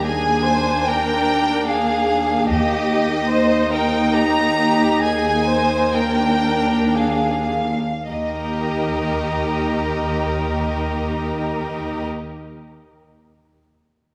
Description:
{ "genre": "classical, slow romantic movement for string orchestra", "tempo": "52-75 BPM", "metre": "3/4", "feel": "rubato", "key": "Eb major", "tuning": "A4 = 440 Hz", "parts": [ { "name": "rich studio violin section", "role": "melody", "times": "0.0-12.1 s", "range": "Eb5 to Bb5", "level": "-25 LUFS", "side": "equal", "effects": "none" }, { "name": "rich chamber violin section", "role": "second line", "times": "0.0-12.1 s", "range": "G4 to C5", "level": "-25 LUFS", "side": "equal", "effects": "none" }, { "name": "rich chamber viola section", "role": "accompaniment", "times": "0.0-12.1 s", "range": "Bb3 to Eb4", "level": "-25 LUFS", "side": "equal", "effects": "none" }, { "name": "dark chamber cello section", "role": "bass", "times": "0.0-12.1 s", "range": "Eb2 to Eb3", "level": "-28 LUFS", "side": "equal", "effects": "none" }, { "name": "dark chamber double bass section", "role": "bass", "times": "2.5-3.3, 8.1-12.1 s", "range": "Eb2", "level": "-30 LUFS", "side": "equal", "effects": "none" } ], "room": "wet concert hall reverb, RT60 2.4 s", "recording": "none", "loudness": "-19 LUFS", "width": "mono", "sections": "0.0-8.1 A section; 8.1-11.3 B section", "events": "slowing down 1.3-8.1", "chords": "0.1 Bb7/Eb; 2.5 Eb; 5.0 Bb7/Eb; 8.1 Eb", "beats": "| 0.07 0.88 1.69 | 2.50 3.31 4.15 | 5.03 5.95 6.98 | 8.10 9.17 10.25" }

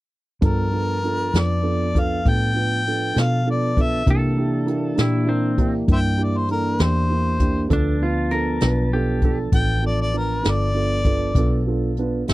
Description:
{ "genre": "slow blues", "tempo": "66 BPM (dotted quarters)", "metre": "12/8", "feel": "straight", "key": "G mixolydian", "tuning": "A4 = 439 Hz", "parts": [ { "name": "dark upright piano", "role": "accompaniment", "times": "0.4-12.3 s", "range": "Bb3 to B4", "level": "-25 LUFS", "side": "right 4 dB", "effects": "none" }, { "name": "mellow tonewheel organ", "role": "sustained chords", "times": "0.4-12.3 s", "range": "E3 to A5", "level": "-28 LUFS", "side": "left 2 dB", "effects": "slow rotary speaker" }, { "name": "vintage muted fingered electric bass", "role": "bass", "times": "0.4-12.3 s", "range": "G1 to C3", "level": "-22 LUFS", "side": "equal", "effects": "none" }, { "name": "jazz brush drum kit", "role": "drums", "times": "0.4-12.3 s", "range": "hi-hat, kick drum, snare drum", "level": "-21 LUFS", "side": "equal", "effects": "none" }, { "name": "warm harmonica", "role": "melody", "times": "0.5-12.3 s", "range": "Bb4 to G5", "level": "-25 LUFS", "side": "left 2 dB", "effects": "overdrive" }, { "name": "clean lap steel guitar", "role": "second line", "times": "4.1-9.4 s", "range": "C4 to Bb4", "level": "-27 LUFS", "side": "equal", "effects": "none" } ], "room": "little or no reverb", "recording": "dry, close 1970s-style studio recording", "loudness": "-18 LUFS", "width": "side -18 dB against mid", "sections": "0.4-12.3 A section", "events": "none", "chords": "0.4 G9; 4.1 C9; 7.7 G9", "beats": "| 0.43 1.34 2.25 3.16 | 4.07 4.98 5.89 6.80 | 7.71 8.63 9.54 10.45 | 11.36 12.27" }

